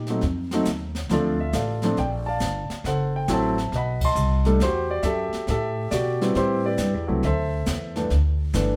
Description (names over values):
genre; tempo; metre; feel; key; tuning
jazz piano trio; 137 BPM; 4/4; swing 66% on 8ths; G major; A4 = 442 Hz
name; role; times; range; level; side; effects
warm grand piano; melody; 0.0-8.8 s; G2 to C6; -26 LUFS; equal; plate reverb
upright bass; bass; 0.0-8.8 s; F#1 to B2; -28 LUFS; equal; none
jazz brush drum kit; drums; 0.1-8.8 s; brushed snare drum, crash cymbal, hi-hat, kick drum, snare drum; -34 LUFS; equal; none
room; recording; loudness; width
moderate studio reverb, RT60 0.8 s; heard from further back in the room; -24 LUFS; mono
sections
0.0-8.1 A section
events
band accent 3.9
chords
0.2 F7(no3); 1.1 Bbmaj7; 2.9 F#m7b5; 3.7 B7b9; 4.6 Em11; 6.4 Am9; 7.2 Dsus2; 8.1 G69